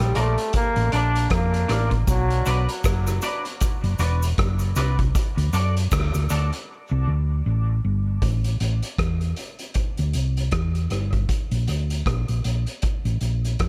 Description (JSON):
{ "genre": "dub reggae", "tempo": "78 BPM", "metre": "4/4", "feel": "swing 58% on 16ths", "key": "A dorian", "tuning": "A4 = 440 Hz", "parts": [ { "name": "bright trombone", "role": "melody", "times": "0.0-2.7 s", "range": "F#3 to D4", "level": "-30 LUFS", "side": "equal", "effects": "dub echo" }, { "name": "hollow-body short-scale fingered electric bass", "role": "bass", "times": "0.0-13.7 s", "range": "E1 to F#2", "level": "-24 LUFS", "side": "equal", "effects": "none" }, { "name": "vintage drum kit", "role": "drums", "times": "0.0-13.7 s", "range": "hi-hat, kick drum, rim click", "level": "-28 LUFS", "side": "equal", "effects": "none" }, { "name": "clean electric guitar", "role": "accompaniment", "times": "0.2-6.6 s", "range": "D4 to D5", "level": "-34 LUFS", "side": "equal", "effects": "analog chorus, dub echo" }, { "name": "cabasa", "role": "percussion", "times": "2.1-6.5 s", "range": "none", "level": "-40 LUFS", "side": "equal", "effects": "none" } ], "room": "studio ambience", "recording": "echo-heavy mix", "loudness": "-23 LUFS", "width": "mono", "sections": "0.0-8.2 A section; 8.2-13.7 B section", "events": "break 0.0-2.1; drums muted 6.7-8.2", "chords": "0.0 Bb; 2.1 Bm; 5.2 D; 8.2 Am; 11.3 Bb", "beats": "0.54 1.31 | 2.08 2.85 3.61 4.38 | 5.15 5.92 6.69 7.45 | 8.22 8.99 9.76 10.53 | 11.30 12.06 12.83 13.60" }